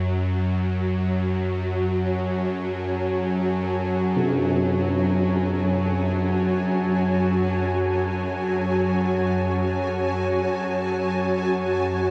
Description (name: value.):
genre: dark ambient drone.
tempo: free time.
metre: none.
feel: none.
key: F# minor.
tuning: A4 = 439 Hz.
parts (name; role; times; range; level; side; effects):
granular cloud pad; sustained chords; 0.0-12.1 s; F#4 to A5; -28 LUFS; equal; built-in reverb, shimmer reverb.
bowed-like drone; drone; 0.0-12.1 s; F#2 to F#3; -26 LUFS; equal; built-in reverb.
tam-tam; percussion; 4.2-4.4 s; none; -32 LUFS; equal; low-pass filter on cymbals.
room: wet cathedral reverb, RT60 6.2 s.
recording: in a vast, echoing space.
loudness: -23 LUFS.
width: mono.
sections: 0.0-12.1 A section.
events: none.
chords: 0.0 F#m.